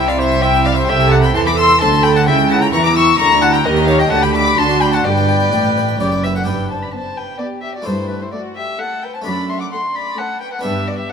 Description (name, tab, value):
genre	classical, baroque-style concerto movement with solo episodes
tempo	130 BPM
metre	3/4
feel	straight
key	G major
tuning	A4 = 440 Hz
part	dark violin	melody	0.0-11.1 s	Bb4 to D6	-18 LUFS	left 3 dB	none
part	warm chamber violin section	melody	0.0-10.5 s	D4 to E6	-20 LUFS	left 5 dB	none
part	rich chamber violin section	second line	0.0-11.1 s	D4 to E6	-24 LUFS	left 4 dB	none
part	dark chamber viola section	accompaniment	0.0-10.5 s	A3 to B4	-21 LUFS	right 4 dB	none
part	harpsichord	accompaniment	0.0-11.1 s	F#2 to A5	-26 LUFS	right 1 dB	none
part	warm chamber cello section	bass	0.0-11.0 s	F#2 to E3	-20 LUFS	right 2 dB	none
part	warm chamber double bass section	bass	0.0-6.5 s	F#1 to E2	-20 LUFS	right 4 dB	none
room	moderate concert hall reverb, RT60 2.1 s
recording	none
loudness	-12 LUFS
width	side -6 dB against mid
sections	0.0-6.5 A section; 6.5-11.1 B section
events	none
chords	0.0 C; 0.9 Am/C; 2.3 C#dim7; 3.6 Eb7; 4.1 G/D; 4.6 D7; 5.0 G; 7.9 A5/G; 9.3 D/F#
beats	0.43 | 0.89 1.35 1.81 | 2.27 2.73 3.19 | 3.65 4.11 4.57 | 5.04 5.52 6.00 | 6.47 6.94 7.40 | 7.87 8.33 8.79 | 9.26 9.72 10.18 | 10.64 11.10